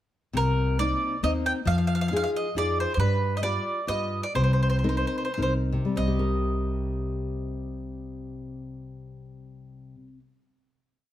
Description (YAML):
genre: italian folk, Italian serenade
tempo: 99-138 BPM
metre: 3/4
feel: swing 54% on 8ths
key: C minor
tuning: A4 = 440 Hz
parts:
  - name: nylon-string guitar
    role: accompaniment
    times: 0.3-10.4 s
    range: C3 to B4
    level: -29 LUFS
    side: left 3 dB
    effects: none
  - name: upright bass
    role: bass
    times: 0.3-10.2 s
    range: C2 to G2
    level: -27 LUFS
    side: right 1 dB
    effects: none
  - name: bowl-back mandolin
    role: melody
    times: 0.4-10.2 s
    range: Bb4 to G5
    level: -28 LUFS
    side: right 1 dB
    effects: none
room: light reverb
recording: close, detailed microphones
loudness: -24 LUFS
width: side -12 dB against mid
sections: 0.4-6.0 A section; 6.0-9.6 final chord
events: slowing down 3.0-6.0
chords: 0.4 Cm7; 1.7 Fm7; 3.0 G7; 4.4 Cm7